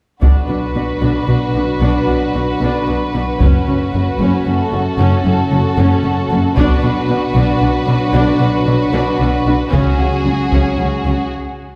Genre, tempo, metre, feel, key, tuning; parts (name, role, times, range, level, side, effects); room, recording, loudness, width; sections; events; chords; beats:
cinematic, epic orchestral film score; 114 BPM; 3/4; straight; A4 = 439 Hz
warm symphonic violin section; melody; 0.2-11.3 s; G#4 to B4; -25 LUFS; equal
warm symphonic violin section; second line; 0.2-11.3 s; F#4; -25 LUFS; equal
warm symphonic viola section; accompaniment; 0.2-11.1 s; C#4 to D4; -24 LUFS; equal
warm French horn section; sustained chords; 0.2-11.3 s; F#3 to D4; -24 LUFS; equal
rich symphonic double bass section; bass; 0.2-11.1 s; F#1 to C#2; -21 LUFS; equal
warm symphonic cello section; bass; 0.2-11.1 s; F#2 to C#3; -22 LUFS; equal
taiko ensemble; drums; 0.2-10.8 s; -18 LUFS; equal
wet scoring stage reverb, RT60 2.0 s; heard from further back in the room; -15 LUFS; mono
0.2-11.8 A section
build-up 0.2-11.8; break 11.3-11.8
0.2 Bm; 3.4 F#m; 6.6 Bm; 9.7 C#sus4
| 0.23 0.76 1.29 | 1.82 2.35 2.88 | 3.41 3.94 4.47 | 5.00 5.52 6.05 | 6.57 7.10 7.62 | 8.14 8.67 9.20 | 9.72 10.25 10.78